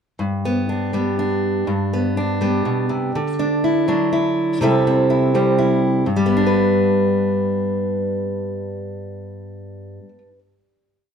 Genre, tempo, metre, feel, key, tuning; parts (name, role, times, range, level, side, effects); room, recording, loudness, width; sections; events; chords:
indie folk with a building arrangement; 123 BPM; 3/4; straight; G major; A4 = 442 Hz
fingerpicked steel-string acoustic guitar; solo; 0.2-10.4 s; G2 to B4; -17 LUFS; equal
moderate large studio reverb, RT60 1.2 s; band playing live in one room; -17 LUFS; side -7 dB against mid
0.2-6.1 breakdown; 6.1-9.0 final chord
0.2 G; 3.1 Dadd9; 4.6 C6; 6.1 G